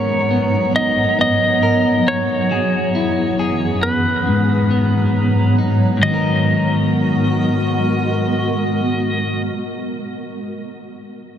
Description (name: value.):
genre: dream pop.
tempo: 68 BPM.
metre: 4/4.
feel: straight.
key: G# minor.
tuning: A4 = 439 Hz.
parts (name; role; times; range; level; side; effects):
clean lap steel guitar; melody; 0.0-9.4 s; B4 to D#5; -21 LUFS; right 1 dB; digital delay.
granular cloud pad; sustained chords; 0.0-9.4 s; F#2 to A#5; -20 LUFS; right 1 dB; built-in reverb.
clean electric guitar; arpeggios; 0.0-9.6 s; G#2 to A#4; -19 LUFS; left 2 dB; wide subtle chorus, digital delay.
room: light reverb.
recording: dense, heavily limited modern master.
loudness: -15 LUFS.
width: side -9 dB against mid.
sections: 0.0-6.0 A section; 6.0-9.6 B section.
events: none.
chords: 0.0 G#m9; 2.5 F#9sus4; 4.3 G#m9.